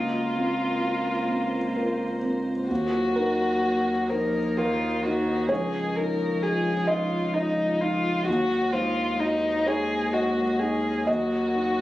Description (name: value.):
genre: neoclassical piano and strings.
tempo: 43 BPM (dotted quarters).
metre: 6/8.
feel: rubato.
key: Eb dorian.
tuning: A4 = 440 Hz.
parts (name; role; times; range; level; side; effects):
dark violin; melody; 0.0-11.8 s; Eb4 to Bb4; -26 LUFS; left 2 dB; none.
warm cello; second line; 0.0-11.8 s; Eb3 to Bb3; -33 LUFS; right 1 dB; none.
felt-muted upright piano; accompaniment; 0.0-11.8 s; Db2 to F5; -28 LUFS; right 1 dB; none.
evolving wavetable pad; sustained chords; 0.0-11.8 s; Gb3 to F5; -35 LUFS; equal; chorus, built-in reverb.
saturated sub bass; bass; 0.0-11.8 s; Db2 to Eb2; -32 LUFS; equal; none.
room: light reverb.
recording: recorded on a phone in the room, studio reverb, compression.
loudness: -23 LUFS.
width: side -15 dB against mid.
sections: 0.0-11.8 A section.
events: none.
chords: 0.0 Bbmadd9/Db; 2.7 Ebm; 5.5 Dbadd9; 8.3 Ebm; 11.1 Ebmadd9.